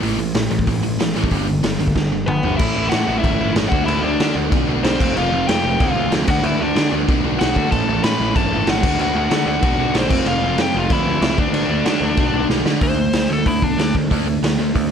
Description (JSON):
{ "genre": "punk rock", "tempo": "188 BPM", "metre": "4/4", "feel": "straight", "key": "unclear", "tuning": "A4 = 444 Hz", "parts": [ { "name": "overdriven electric guitar", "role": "riff", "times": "0.0-14.9 s", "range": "G2 to F#4", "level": "-23 LUFS", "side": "right 15 dB", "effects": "none" }, { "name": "sludgy distorted guitar", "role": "riff", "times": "0.0-14.9 s", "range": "F2 to D4", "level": "-24 LUFS", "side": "left 13 dB", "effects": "overdrive" }, { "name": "overdriven picked electric bass", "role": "bass", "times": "0.0-14.9 s", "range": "F1 to D3", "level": "-24 LUFS", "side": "equal", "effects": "none" }, { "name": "raw garage drum kit", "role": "drums", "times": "0.0-14.8 s", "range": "crash cymbal, hi-hat, kick drum, snare drum, toms", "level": "-20 LUFS", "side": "equal", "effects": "none" }, { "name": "nasal lead guitar with a parked wah", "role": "melody", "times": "2.3-13.9 s", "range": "B3 to B5", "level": "-22 LUFS", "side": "left 3 dB", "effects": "overdrive, digital delay" } ], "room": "little or no reverb", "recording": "none", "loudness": "-16 LUFS", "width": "side -8 dB against mid", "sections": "0.0-2.6 A section; 2.6-12.8 B section; 12.8-14.9 C section", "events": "drum fill 2.0-2.6, 12.5-12.8; lead electric guitar solo 12.8-14.9", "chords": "0.0 A5; 1.3 G; 2.6 A; 3.7 D; 5.0 F; 6.3 D; 7.7 A; 8.8 D; 10.1 F; 11.4 D; 12.8 D5", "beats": "| 0.03 0.35 0.67 0.99 | 1.32 1.64 1.96 2.28 | 2.60 2.92 3.24 3.56 | 3.88 4.20 4.52 4.84 | 5.16 5.48 5.80 6.12 | 6.44 6.76 7.08 7.40 | 7.72 8.04 8.35 8.67 | 8.99 9.31 9.63 9.95 | 10.27 10.59 10.91 11.23 | 11.55 11.87 12.19 12.51 | 12.82 13.15 13.47 13.79 | 14.11 14.43 14.75" }